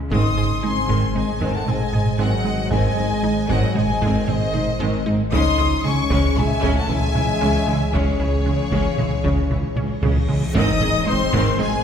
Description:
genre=cinematic, hybrid orchestral and electronic film score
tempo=115 BPM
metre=5/4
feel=straight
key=C# harmonic minor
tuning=A4 = 444 Hz
part: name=glassy FM pad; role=sustained chords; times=0.0-11.8 s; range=C#3 to C#5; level=-29 LUFS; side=equal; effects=ensemble chorus, built-in reverb
part: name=sub bass with octave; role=bass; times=0.0-11.8 s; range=G#1 to C#2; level=-29 LUFS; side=equal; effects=none
part: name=rich symphonic violin section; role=melody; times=0.1-11.8 s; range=C#5 to D#6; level=-26 LUFS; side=left 4 dB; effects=none
part: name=clear symphonic violin section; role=second line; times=0.1-11.8 s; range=G#4 to B#5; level=-29 LUFS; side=left 4 dB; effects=none
part: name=rich studio viola section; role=accompaniment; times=0.1-11.7 s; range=D#3 to G#4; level=-28 LUFS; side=equal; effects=none
part: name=warm French horn section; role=sustained chords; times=0.1-11.8 s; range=C#3 to D#4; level=-27 LUFS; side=left 4 dB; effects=none
part: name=resonant blip pluck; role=arpeggios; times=0.1-11.7 s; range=C#3 to G#4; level=-32 LUFS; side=right 2 dB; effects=chorus
part: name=round analog bass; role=riff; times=0.1-11.8 s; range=C#2 to G#3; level=-24 LUFS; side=right 2 dB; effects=none
part: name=rich symphonic cello section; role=bass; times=0.1-11.7 s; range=G#2 to C#3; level=-29 LUFS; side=right 3 dB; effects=none
part: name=rich symphonic double bass section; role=bass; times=0.1-11.7 s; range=G#1 to C#2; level=-28 LUFS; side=right 2 dB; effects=none
part: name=taiko ensemble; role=drums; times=0.1-11.8 s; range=none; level=-27 LUFS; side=equal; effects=none
part: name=reverse cymbal and impact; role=sound effects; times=10.2-11.8 s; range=none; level=-31 LUFS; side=equal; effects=none
room=wet scoring stage reverb, RT60 1.7 s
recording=heard from further back in the room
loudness=-17 LUFS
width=side -8 dB against mid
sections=0.0-10.6 A section; 10.6-11.8 B section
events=drum fill 9.8-10.6; reverse cymbal 10.2-10.6; impact 10.6-11.8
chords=0.1 G#; 5.3 C#m; 10.6 G#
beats=| 0.12 0.64 1.16 1.68 2.20 | 2.72 3.25 3.77 4.29 4.81 | 5.33 5.86 6.38 6.90 7.42 | 7.94 8.46 8.98 9.51 10.03 | 10.55 11.07 11.59

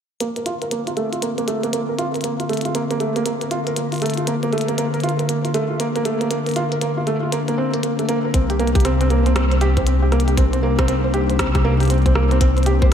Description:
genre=IDM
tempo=118 BPM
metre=4/4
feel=swing 62% on 16ths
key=Bb major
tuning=A4 = 440 Hz
part: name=warbly tape-like pad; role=sustained chords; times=0.7-12.9 s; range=C3 to Eb4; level=-24 LUFS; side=left 2 dB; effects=chorus, built-in reverb
part: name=felt-muted upright piano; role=arpeggios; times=0.2-12.8 s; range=A3 to C5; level=-21 LUFS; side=right 2 dB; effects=low-pass filter, ping-pong delay, slapback echo
part: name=glitchy drum kit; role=drums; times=0.2-12.8 s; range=hi-hat, rim click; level=-28 LUFS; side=left 1 dB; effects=studio reverb
part: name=dark detuned saw bass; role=bass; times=8.3-12.9 s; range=C2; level=-18 LUFS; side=equal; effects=none
part: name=electronic kick drum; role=drums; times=8.3-12.9 s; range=none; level=-18 LUFS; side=equal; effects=studio reverb
room=moderate lush hall reverb, RT60 2.0 s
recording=big arena sound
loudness=-17 LUFS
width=side -8 dB against mid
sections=0.2-12.9 A section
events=filter sweep on ambient pad 0.2-12.9; filter sweep on felt piano 0.2-12.9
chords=0.2 Bbadd9; 8.3 Cm7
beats=| 0.20 0.71 1.22 1.73 | 2.24 2.75 3.26 3.77 | 4.27 4.78 5.29 5.80 | 6.31 6.82 7.32 7.83 | 8.34 8.85 9.36 9.87 | 10.38 10.88 11.39 11.90 | 12.41 12.92

